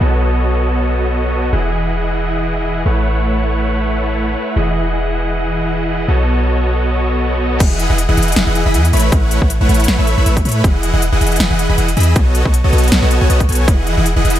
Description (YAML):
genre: future bass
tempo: 158 BPM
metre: 4/4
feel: swing 56% on 16ths, half-time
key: E major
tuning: A4 = 440 Hz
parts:
  - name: supersaw chords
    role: riff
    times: 0.0-14.4 s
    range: E3 to B5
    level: -17 LUFS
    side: equal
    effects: sidechain pumping, low-pass filter, dub echo
  - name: warm 808-style bass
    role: bass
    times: 0.0-14.4 s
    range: E1 to A2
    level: -15 LUFS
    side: equal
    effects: sidechain pumping
  - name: big-room dance drum kit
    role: drums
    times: 7.6-14.4 s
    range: crash cymbal, hi-hat, snare drum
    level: -20 LUFS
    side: left 1 dB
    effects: overdrive
  - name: electronic kick drum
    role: drums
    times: 7.6-13.8 s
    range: none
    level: -14 LUFS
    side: equal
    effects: overdrive
room: light reverb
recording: none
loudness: -12 LUFS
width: side -12 dB against mid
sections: 0.0-7.6 A section; 7.6-14.4 B section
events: drop 7.6-14.4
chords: 0.0 B9; 1.5 Emaj7; 2.9 A6; 4.6 Emaj7; 6.1 B9; 7.6 Emaj7; 8.9 A6; 10.6 Emaj7; 12.2 B9; 13.7 Emaj7